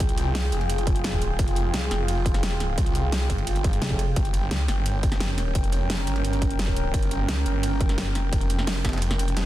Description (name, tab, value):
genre	dark technical drum and bass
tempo	173 BPM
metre	4/4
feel	straight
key	unclear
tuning	A4 = 440 Hz
part	dark analog pad	sustained chords	0.0-9.5 s	Db4 to G5	-30 LUFS	right 1 dB	chorus, sidechain pumping
part	snarling distorted saw bass	bass	0.0-9.5 s	F1 to Db2	-25 LUFS	equal	distortion, overdrive
part	breakbeat sampler-style drum kit	drums	0.0-9.4 s	hi-hat, ride cymbal, snare drum	-39 LUFS	right 1 dB	none
part	dubstep drum kit	drums	0.0-9.4 s	hi-hat, snare drum	-31 LUFS	equal	none
part	electronic kick drum	drums	0.0-8.9 s	none	-25 LUFS	equal	none
part	metallic wobble bass	bass	3.8-4.2 s	F1	-26 LUFS	equal	chorus
room	light reverb, digital ambience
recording	dense, heavily limited modern master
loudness	-22 LUFS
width	side -14 dB against mid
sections	0.0-9.5 A section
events	kick drops out 9.0-9.5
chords	0.0 Fmadd9; 4.2 Gdim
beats	| 0.00 0.35 0.70 1.04 | 1.39 1.74 2.08 2.43 | 2.78 3.12 3.47 3.82 | 4.16 4.51 4.86 5.21 | 5.55 5.90 6.25 6.59 | 6.94 7.29 7.63 7.98 | 8.33 8.67 9.02 9.37